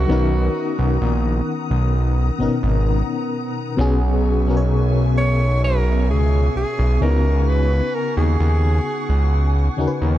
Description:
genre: contemporary R&B.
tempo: 65 BPM.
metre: 4/4.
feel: straight.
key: unclear.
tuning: A4 = 444 Hz.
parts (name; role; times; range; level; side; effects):
clear alto saxophone; melody; 0.0-10.0 s; F#4 to C#5; -25 LUFS; right 1 dB; digital delay.
FM electric piano with tremolo; accompaniment; 0.0-10.2 s; B2 to C#5; -23 LUFS; left 4 dB; none.
glassy FM pad; sustained chords; 0.0-10.2 s; B3 to D#6; -29 LUFS; right 2 dB; ensemble chorus, built-in reverb.
fat analog bass; bass; 0.0-10.2 s; G#1 to D#2; -17 LUFS; equal; none.
room: little or no reverb.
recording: dark, warm production.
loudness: -16 LUFS.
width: side -13 dB against mid.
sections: 0.0-10.2 A section.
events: none.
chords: 0.1 Bmaj7; 3.8 E6/B; 7.0 C#7sus4.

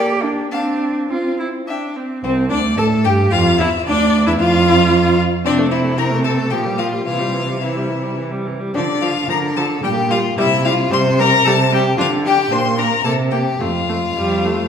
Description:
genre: quick classical-period movement for string quartet.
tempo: 102-115 BPM.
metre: 3/4.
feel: rubato.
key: F major.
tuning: A4 = 440 Hz.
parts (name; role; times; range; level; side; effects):
clear violin; melody; 0.0-14.7 s; C5 to C6; -21 LUFS; left 7 dB; none.
rich violin; second line; 0.0-14.7 s; C4 to F5; -21 LUFS; left 4 dB; none.
clear viola; accompaniment; 0.0-14.7 s; E3 to A4; -21 LUFS; right 1 dB; none.
rich cello; bass; 0.0-14.7 s; C2 to G4; -19 LUFS; right 3 dB; none.
room: wet recital hall reverb, RT60 1.6 s.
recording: heard from further back in the room.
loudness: -14 LUFS.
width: side -8 dB against mid.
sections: 0.0-2.2 A section; 2.2-14.7 B section.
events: none.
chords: 0.0 Gm/Bb; 0.5 F/C; 1.7 C; 2.2 F/C; 3.9 Dm; 5.5 Am/C; 6.5 Gm7/Bb; 7.1 C; 8.8 Dm; 9.8 Gm7/Bb; 10.4 C5; 12.0 N.C.; 12.5 Bb; 13.0 C5; 13.6 F.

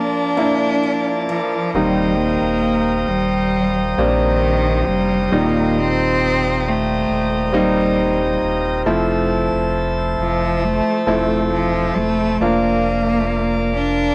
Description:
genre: pop.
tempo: 67 BPM.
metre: 4/4.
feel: straight.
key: unclear.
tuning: A4 = 436 Hz.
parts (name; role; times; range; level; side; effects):
rich cello; melody; 0.0-14.1 s; Eb3 to D4; -23 LUFS; equal; cassette tape.
clear concert grand piano; accompaniment; 0.0-14.1 s; Bb2 to F4; -23 LUFS; equal; cassette tape.
pipe organ, sparkling flutes; sustained chords; 0.0-14.1 s; F3 to E6; -25 LUFS; equal; cassette tape.
picked steel-string acoustic guitar; arpeggios; 0.0-2.3 s; F3 to Bb4; -32 LUFS; equal; cassette tape.
sub bass with octave; bass; 1.7-14.1 s; Eb1 to Bb1; -27 LUFS; equal; none.
room: light reverb.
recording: home recording on cassette.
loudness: -18 LUFS.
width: mono.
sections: 0.0-1.7 A section; 1.7-14.1 A section.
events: break 0.0-1.7.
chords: 0.0 Bb/F; 1.7 Eb6; 8.9 Fmaj7; 12.4 Bb/F.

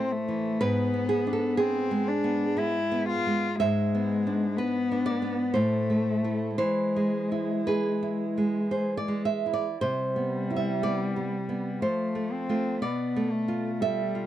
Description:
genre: romantic duo for cello and classical guitar.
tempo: 54-62 BPM.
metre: 3/4.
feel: rubato.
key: unclear.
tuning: A4 = 440 Hz.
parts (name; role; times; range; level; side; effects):
warm cello; melody; 0.0-14.3 s; G3 to F4; -29 LUFS; left 4 dB; none.
nylon-string guitar; accompaniment; 0.0-14.3 s; G#2 to E5; -27 LUFS; right 3 dB; none.
room: moderate booth ambience, RT60 0.2 s.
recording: dry, close 1970s-style studio recording.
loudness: -25 LUFS.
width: side -12 dB against mid.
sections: 0.0-14.3 A section.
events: none.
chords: 0.0 Am; 0.6 G#dim; 5.6 Am; 6.6 E; 9.8 Cmaj7; 11.8 F; 12.8 Bm7b5.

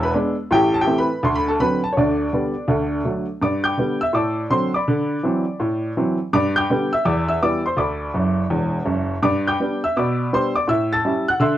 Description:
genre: jazz, stride piano.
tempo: 165 BPM.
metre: 4/4.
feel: swing 64% on 8ths.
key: G major.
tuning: A4 = 440 Hz.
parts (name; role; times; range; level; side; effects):
clear upright piano; solo; 0.0-11.6 s; E1 to A6; -18 LUFS; equal; none.
room: moderate small room reverb, RT60 0.5 s.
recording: none.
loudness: -18 LUFS.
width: side -12 dB against mid.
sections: 0.0-3.4 A section; 3.4-11.6 B section.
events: upright piano fill 8.1-9.2.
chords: 0.0 E7; 0.5 Am7; 1.2 D7; 2.0 G/D; 2.7 D; 3.4 G; 4.1 D7/A; 4.9 D13; 6.3 G; 7.1 Em; 7.8 Bm; 8.5 D; 9.2 G; 10.0 G/B; 10.7 A7.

